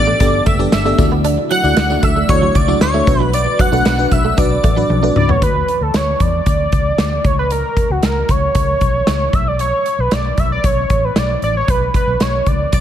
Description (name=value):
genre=1980s-style pop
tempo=115 BPM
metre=4/4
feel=straight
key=unclear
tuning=A4 = 440 Hz
part: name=octave-doubled lead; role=melody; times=0.0-12.8 s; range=F#4 to F#5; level=-18 LUFS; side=equal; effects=chorus
part: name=shimmering bell with halo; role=second line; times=0.0-5.2, 12.7-12.8 s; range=C#6 to F#6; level=-26 LUFS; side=right 3 dB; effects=ensemble chorus, digital delay
part: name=FM electric piano with soft pad layer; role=accompaniment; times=0.0-5.4 s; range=G2 to E5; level=-19 LUFS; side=left 2 dB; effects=chorus
part: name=vintage muted fingered electric bass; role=bass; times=0.0-12.8 s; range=F#1 to E2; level=-19 LUFS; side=equal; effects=none
part: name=direct-recorded clean electric guitar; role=riff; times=0.1-5.4 s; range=F#3 to D4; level=-24 LUFS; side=right 9 dB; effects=ensemble chorus, digital delay
part: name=big rock drum kit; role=drums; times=0.2-12.8 s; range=hi-hat, kick drum, snare drum, tambourine, toms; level=-17 LUFS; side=equal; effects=none
room=light reverb, small room ambience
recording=none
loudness=-12 LUFS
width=side -10 dB against mid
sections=0.0-5.4 A section; 5.4-12.8 B section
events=drum fill 4.9-5.4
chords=0.0 Gadd9; 1.0 Dadd9; 3.1 Bm; 5.4 N.C.; 7.2 F# (rootless); 9.3 Bm